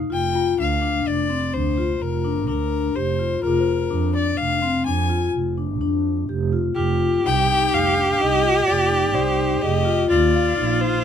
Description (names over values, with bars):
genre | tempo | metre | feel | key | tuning
contemporary instrumental, chamber music in an uneven meter | 126 BPM | 7/4 | straight | unclear | A4 = 440 Hz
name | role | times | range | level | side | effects
vibraphone with medium mallets | arpeggios | 0.0-11.0 s | C4 to Ab4 | -23 LUFS | left 5 dB | none
warm violin | melody | 0.1-11.0 s | Bb4 to Ab5 | -24 LUFS | left 5 dB | none
dark double bass | bass | 0.1-10.9 s | F1 to F2 | -24 LUFS | right 4 dB | none
celesta | texture | 0.4-4.1, 9.1-10.9 s | F4 to F5 | -31 LUFS | left 8 dB | none
bright viola | second line | 6.7-11.0 s | F4 to G4 | -21 LUFS | right 2 dB | none
room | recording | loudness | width
light reverb | close, detailed microphones | -18 LUFS | side -8 dB against mid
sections
0.1-11.0 A section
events
none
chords
0.1 Gm7/F (rootless); 6.8 F7(no3); 10.1 Ebsus2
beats
| 0.10 0.58 1.06 1.53 2.01 2.48 2.96 | 3.44 3.91 4.39 4.86 5.34 5.82 6.29 | 6.77 7.24 7.72 8.19 8.67 9.14 9.62 | 10.10 10.57